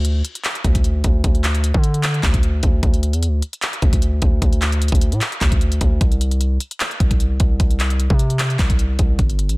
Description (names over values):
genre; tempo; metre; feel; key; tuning
hip hop, trap; 151 BPM; 4/4; half-time; unclear; A4 = 441 Hz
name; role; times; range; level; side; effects
distorted 808-style bass; bass; 0.0-9.6 s; G1 to D3; -18 LUFS; equal; distortion
trap drum kit; drums; 0.0-9.6 s; handclaps, hi-hat, kick drum; -18 LUFS; equal; none
room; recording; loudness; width
little or no reverb; dense, heavily limited modern master; -15 LUFS; side -24 dB against mid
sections
0.0-9.6 A section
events
none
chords
none